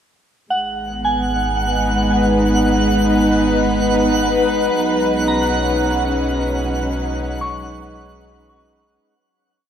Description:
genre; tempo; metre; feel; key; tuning
ambient; 56 BPM; 4/4; straight; G# minor; A4 = 441 Hz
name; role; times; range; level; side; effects
dark studio string section; sustained chords; 0.5-9.0 s; F#3 to B4; -17 LUFS; equal; none
soft synth bell; arpeggios; 0.5-9.5 s; F#5 to C#6; -25 LUFS; right 2 dB; chorus, phaser, tape echo
warm sub bass; bass; 0.5-9.0 s; G#1 to B1; -25 LUFS; equal; none
pedal harmonium; drone; 0.5-9.1 s; G#3 to D#4; -33 LUFS; equal; none
twinkling granular texture; texture; 0.9-9.1 s; F#5 to F#6; -23 LUFS; right 2 dB; built-in reverb
room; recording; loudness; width
wet huge ambient reverb, RT60 8.3 s; cassette tape; -15 LUFS; side -9 dB against mid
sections
0.5-9.0 A section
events
fade-out 4.7-9.0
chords
0.5 G#m; 4.7 Badd9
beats
| 0.50 1.57 2.63 3.68 | 4.75 5.81 6.88 7.95

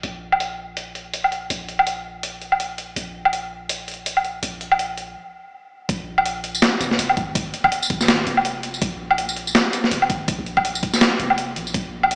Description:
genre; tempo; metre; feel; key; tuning
half-time drum and bass; 164 BPM; 4/4; swing 58% on 16ths, half-time; unclear; A4 = 439 Hz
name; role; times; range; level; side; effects
long sustained 808-style bass; bass; 0.0-12.2 s; F1 to Bb1; -37 LUFS; equal; none
boom bap sampler-style drum kit; drums; 0.0-12.2 s; hi-hat, snare drum, tambourine, woodblock; -22 LUFS; equal; low-pass filter on hats, low-pass filter on perc, low-pass filter on snare, low-pass filter on room
electronic kick drum; drums; 5.9-11.8 s; none; -28 LUFS; equal; none
room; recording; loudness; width
light reverb; played on a big sound system in a bare room, large studio reverb, small speaker sound; -22 LUFS; mono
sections
0.0-5.9 A section; 5.9-12.2 B section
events
stop 5.2-5.9; drop 5.9-12.2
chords
none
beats
| 0.04 0.40 0.77 1.13 | 1.50 1.87 2.23 2.60 | 2.96 3.33 3.69 4.06 | 4.43 4.79 5.16 5.52 | 5.89 6.26 6.62 6.99 | 7.35 7.72 8.09 8.45 | 8.82 9.18 9.55 9.91 | 10.28 10.65 11.01 11.38 | 11.74 12.11

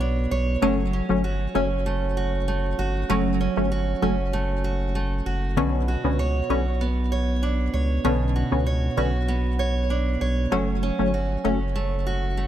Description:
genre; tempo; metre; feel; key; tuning
dancehall; 97 BPM; 4/4; straight; B minor; A4 = 438 Hz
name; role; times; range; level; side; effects
picked steel-string acoustic guitar; arpeggios; 0.0-12.5 s; B2 to C#5; -27 LUFS; right 4 dB; digital delay
saturated sub bass; bass; 0.0-12.5 s; F#1 to C#2; -25 LUFS; equal; none
punchy chord stab; accompaniment; 0.6-11.6 s; D3 to C#4; -25 LUFS; left 2 dB; chorus
room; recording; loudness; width
small room ambience; lossy compression artefacts; -21 LUFS; side -11 dB against mid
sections
0.0-12.5 A section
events
none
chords
0.0 Bmadd9; 0.6 F#m; 5.6 Bmadd9; 10.5 F#m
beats
0.00 | 0.62 1.24 1.86 2.48 | 3.10 3.71 4.33 4.95 | 5.57 6.19 6.81 7.43 | 8.04 8.66 9.28 9.90 | 10.52 11.14 11.76 12.38

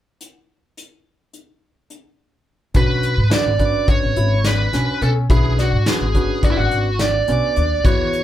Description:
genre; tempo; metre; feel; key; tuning
progressive instrumental, band music in an uneven meter; 212 BPM (eighths); 9/8; straight; B dorian; A4 = 440 Hz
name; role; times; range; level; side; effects
soft brush drum kit; drums; 0.2-8.2 s; hi-hat, kick drum, snare drum; -19 LUFS; left 1 dB; none
barky tine electric piano; accompaniment; 2.7-8.2 s; B3 to B4; -27 LUFS; right 3 dB; none
upright bass; bass; 2.7-8.2 s; G#1 to B2; -19 LUFS; equal; none
bluesy overdriven lead guitar; melody; 2.8-8.2 s; E4 to D5; -21 LUFS; right 1 dB; distortion
dark concert grand piano; arpeggios; 2.8-8.2 s; C#4 to F#4; -26 LUFS; left 3 dB; none
room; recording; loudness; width
moderate small room reverb, RT60 0.5 s; band playing live in one room; -15 LUFS; side -12 dB against mid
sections
0.2-2.8 A section; 2.8-8.2 B section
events
none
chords
0.2 N.C.; 2.8 Bmadd9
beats
| 0.20 0.49 0.77 1.05 1.34 1.62 1.90 2.19 2.47 | 2.75 3.04 3.32 3.60 3.89 4.17 4.45 4.74 5.02 | 5.30 5.59 5.87 6.15 6.44 6.72 7.00 7.29 7.57 | 7.85 8.13

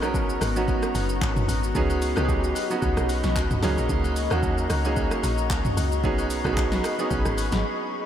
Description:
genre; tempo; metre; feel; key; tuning
amapiano; 112 BPM; 4/4; swing 55% on 16ths; unclear; A4 = 440 Hz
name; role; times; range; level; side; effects
bright concert grand piano; accompaniment; 0.0-8.1 s; F#3 to A#4; -27 LUFS; right 4 dB; none
glassy FM pad; sustained chords; 0.0-8.1 s; B3 to C#6; -30 LUFS; left 4 dB; ensemble chorus, built-in reverb, sidechain pumping
deep log drum bass; bass; 0.0-7.6 s; F#1 to D#2; -26 LUFS; equal; none
deep house drum kit; drums; 0.0-7.6 s; handclaps, hi-hat, kick drum, rim click, shaker, snare drum, toms; -28 LUFS; equal; overdrive
agogo bells and woodblock; percussion; 0.0-7.5 s; none; -37 LUFS; left 3 dB; none
room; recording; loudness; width
moderate huge ambient reverb, RT60 7.9 s; dreamy mix soaked in reverb; -22 LUFS; side -10 dB against mid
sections
0.0-8.1 A section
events
break 7.6-8.1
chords
0.0 G#m11; 1.8 C#9sus4; 3.6 F#6; 6.0 B69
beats
0.14 0.68 1.22 | 1.75 2.29 2.82 3.36 | 3.90 4.43 4.97 5.50 | 6.04 6.57 7.11 7.64

